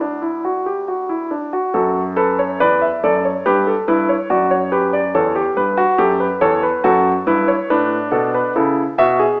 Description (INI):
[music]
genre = classical, baroque-style 3-part fugue for grand piano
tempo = 70 BPM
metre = 4/4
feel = straight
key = D major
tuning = A4 = 441 Hz
[part]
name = warm grand piano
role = solo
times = 0.0-9.4 s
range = D2 to E5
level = -17 LUFS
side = equal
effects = none
[sound]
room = moderate recital hall reverb, RT60 1.5 s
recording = small speaker sound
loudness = -17 LUFS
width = mono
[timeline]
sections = 0.0-1.7 A section; 1.7-9.4 B section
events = none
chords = 0.0 D; 1.7 D/F#; 3.5 G; 5.2 A7/E; 6.8 D/F#; 8.6 A